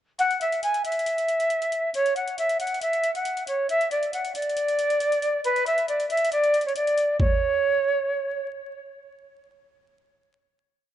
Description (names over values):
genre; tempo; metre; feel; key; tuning
hip hop, trap; 137 BPM; 4/4; half-time; unclear; A4 = 441 Hz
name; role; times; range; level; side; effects
jazz flute; melody; 0.2-8.5 s; B4 to G#5; -22 LUFS; equal; low-pass filter
trap drum kit; drums; 0.2-7.3 s; hi-hat, kick drum, toms; -31 LUFS; equal; none
room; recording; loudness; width
light reverb, digital ambience; dark, warm production, vinyl crackle, nothing above 10.8 kHz; -22 LUFS; side -11 dB against mid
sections
0.2-7.2 breakdown; 7.2-10.7 final note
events
none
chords
none